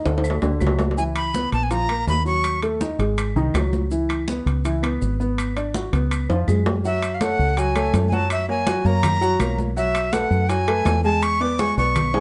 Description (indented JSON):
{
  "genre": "Afro-Cuban jazz",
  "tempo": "164 BPM",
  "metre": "4/4",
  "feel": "straight",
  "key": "C# minor, F# minor from 6.8 s",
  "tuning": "A4 = 440 Hz",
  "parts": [
    { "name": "warm baby grand piano", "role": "accompaniment", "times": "0.0-12.2 s", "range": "D3 to G#5", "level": "-27 LUFS", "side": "equal", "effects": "none" },
    { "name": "deep dub fingered electric bass", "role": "bass", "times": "0.1-12.2 s", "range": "G#1 to F#2", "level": "-25 LUFS", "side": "equal", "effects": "none" },
    { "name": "congas", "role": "percussion", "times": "0.1-12.2 s", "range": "none", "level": "-31 LUFS", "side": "equal", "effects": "none" },
    { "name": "maracas", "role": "percussion", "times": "0.1-12.1 s", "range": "none", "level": "-46 LUFS", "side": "equal", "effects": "none" },
    { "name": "timbales", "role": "percussion", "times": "0.1-12.2 s", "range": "none", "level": "-31 LUFS", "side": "equal", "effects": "none" },
    { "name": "claves", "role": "percussion", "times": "0.2-12.1 s", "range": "none", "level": "-40 LUFS", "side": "equal", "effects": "none" },
    { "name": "breathy bright jazz flute", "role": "melody", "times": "1.0-2.6, 6.9-12.2 s", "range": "E5 to D6", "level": "-26 LUFS", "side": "equal", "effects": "plate reverb" }
  ],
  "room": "light reverb",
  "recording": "nothing above 10.3 kHz",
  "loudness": "-21 LUFS",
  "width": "mono",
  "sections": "0.0-6.8 A section; 6.8-12.2 B section",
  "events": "drum fill 0.1-1.0, 6.3-6.8",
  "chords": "0.2 D; 1.0 C#m7; 1.7 A#5; 2.4 D#dim; 3.2 G#7; 3.9 C#m7; 5.4 G#m7b5; 6.1 C#7; 6.8 F#madd9; 8.3 F#; 9.8 B7sus4; 11.2 E6"
}